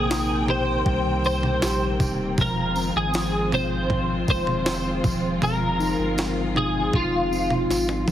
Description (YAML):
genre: pop ballad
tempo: 79 BPM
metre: 4/4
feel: straight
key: F minor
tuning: A4 = 439 Hz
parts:
  - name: twelve-string electric guitar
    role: melody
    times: 0.0-8.0 s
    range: F4 to C5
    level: -25 LUFS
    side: equal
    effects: ensemble chorus
  - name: mellow tine electric piano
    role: accompaniment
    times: 0.0-8.1 s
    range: C3 to G4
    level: -27 LUFS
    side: left 2 dB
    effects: slow stereo tremolo
  - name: warm studio string section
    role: sustained chords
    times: 0.0-8.1 s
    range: Eb3 to G5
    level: -30 LUFS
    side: equal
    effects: none
  - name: warm sub bass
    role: bass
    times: 0.0-8.1 s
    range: Eb1 to C2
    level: -30 LUFS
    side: equal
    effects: none
  - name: jungle sampler-style drum kit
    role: drums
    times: 0.1-8.1 s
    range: kick drum, snare drum, toms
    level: -27 LUFS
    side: right 1 dB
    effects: none
  - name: tambourine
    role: percussion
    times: 0.1-8.1 s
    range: none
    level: -38 LUFS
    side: right 3 dB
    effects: none
room: light reverb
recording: heavily compressed radio sound, multiband compression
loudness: -20 LUFS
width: side -11 dB against mid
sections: 0.0-8.1 A section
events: drum fill 7.7-8.1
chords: 0.0 Cm7; 2.4 Fm7